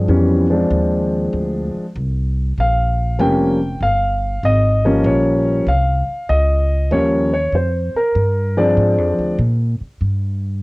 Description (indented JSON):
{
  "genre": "jazz",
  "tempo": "97 BPM",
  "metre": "4/4",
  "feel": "swing 67% on 8ths",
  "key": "Bb mixolydian",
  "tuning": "A4 = 440 Hz",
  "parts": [
    { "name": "dark grand piano", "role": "melody", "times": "0.0-9.4 s", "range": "E3 to G5", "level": "-16 LUFS", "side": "equal", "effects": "cassette tape" },
    { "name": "upright bass", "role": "bass", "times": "0.0-10.6 s", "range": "F1 to Bb2", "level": "-18 LUFS", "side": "equal", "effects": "none" }
  ],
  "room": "light reverb",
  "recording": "home recording on cassette",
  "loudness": "-15 LUFS",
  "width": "side -23 dB against mid",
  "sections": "0.0-10.6 A section",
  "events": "none",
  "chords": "0.0 Bb9 (rootless); 2.6 Eb9; 7.5 Bb9; 10.0 N.C.",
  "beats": "| 0.09 0.71 1.33 1.95 | 2.57 3.19 3.81 4.44 | 5.06 5.68 6.30 6.92 | 7.54 8.15 8.77 9.39 | 10.01"
}